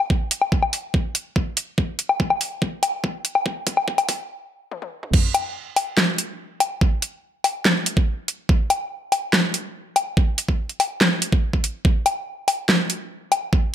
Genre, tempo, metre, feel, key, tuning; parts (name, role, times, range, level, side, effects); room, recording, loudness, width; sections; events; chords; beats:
dubstep; 143 BPM; 4/4; half-time
dubstep drum kit; drums; 0.0-13.4 s; crash cymbal, handclaps, hi-hat, snare drum, toms, woodblock; -20 LUFS; left 1 dB
electronic kick drum; drums; 0.1-13.6 s; -19 LUFS; right 1 dB; overdrive
light reverb, digital ambience; high-pass filter; -20 LUFS; side -10 dB against mid
0.0-5.1 A section; 5.1-13.7 B section
build-up 0.0-5.1; drum fill 1.8-4.3, 4.7-5.1; stop 4.3-5.1; drop 5.1-13.7
| 0.10 0.52 0.94 1.36 | 1.78 2.20 2.62 3.04 | 3.46 3.88 4.30 4.72 | 5.13 5.55 5.97 6.39 | 6.81 7.23 7.65 8.07 | 8.49 8.91 9.33 9.75 | 10.17 10.59 11.01 11.43 | 11.85 12.27 12.69 13.11 | 13.53